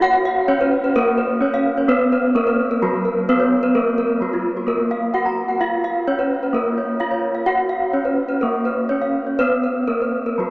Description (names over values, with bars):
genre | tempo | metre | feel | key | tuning
gamelan | 129 BPM | 4/4 | straight | Bb pelog | A4 = 440 Hz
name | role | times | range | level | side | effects
gamelan-type bronze metallophone | melody | 0.0-10.5 s | Gb3 to Gb4 | -20 LUFS | equal | none
gamelan-type bronze metallophone | arpeggios | 0.0-10.5 s | F4 to Bb5 | -19 LUFS | equal | none
room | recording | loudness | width
wet cathedral reverb, RT60 6.3 s | in a vast, echoing space, small speaker sound | -16 LUFS | side -25 dB against mid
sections
0.0-10.5 A section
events
none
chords
none